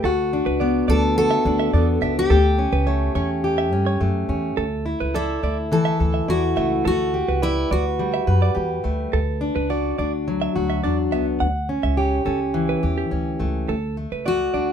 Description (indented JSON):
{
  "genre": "pop",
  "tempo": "106 BPM",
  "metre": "4/4",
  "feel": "straight",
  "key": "D major",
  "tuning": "A4 = 439 Hz",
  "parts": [
    { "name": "fingerpicked plugged-in steel-string acoustic guitar", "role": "accompaniment", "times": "0.0-14.7 s", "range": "E3 to B4", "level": "-23 LUFS", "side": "left 2 dB", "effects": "none" },
    { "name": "direct-recorded clean electric guitar", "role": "arpeggios", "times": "0.0-14.7 s", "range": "G4 to F#5", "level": "-28 LUFS", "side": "right 8 dB", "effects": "none" },
    { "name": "upright bass", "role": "bass", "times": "0.0-14.7 s", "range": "C#2 to G2", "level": "-23 LUFS", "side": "equal", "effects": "none" },
    { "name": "picked steel-string acoustic guitar", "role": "melody", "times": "0.9-8.8, 14.3-14.7 s", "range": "E4 to A4", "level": "-23 LUFS", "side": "left 1 dB", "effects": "none" }
  ],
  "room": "light reverb",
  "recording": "minimal, uncompressed stereo recording",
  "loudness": "-19 LUFS",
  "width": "side -8 dB against mid",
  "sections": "0.0-4.6 A section; 4.6-13.7 B section; 13.7-14.7 C section",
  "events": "none",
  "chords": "0.0 Bm; 2.3 A7; 4.6 Dsus2; 6.9 Gadd9; 9.1 Bm; 11.4 A7; 13.7 D"
}